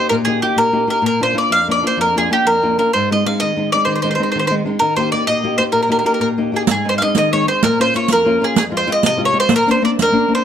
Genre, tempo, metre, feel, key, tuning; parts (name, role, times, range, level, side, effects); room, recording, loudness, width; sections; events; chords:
italian folk, Italian serenade; 127 BPM (dotted quarters); 6/8; straight; Eb major; A4 = 436 Hz
bowl-back mandolin; melody; 0.0-10.4 s; G4 to F5; -15 LUFS; equal; plate reverb
flamenco guitar; accompaniment; 0.0-10.4 s; F2 to G4; -19 LUFS; left 2 dB
riq; percussion; 6.7-10.1 s; -18 LUFS; right 6 dB
moderate studio reverb, RT60 0.5 s; -13 LUFS; side -9 dB against mid
0.0-6.7 A section; 6.7-10.4 B section
0.0 Eb; 1.0 Bb; 2.9 Ab; 4.8 Eb; 6.7 Ab; 7.6 Bbm; 8.6 Fm; 9.5 Bbadd9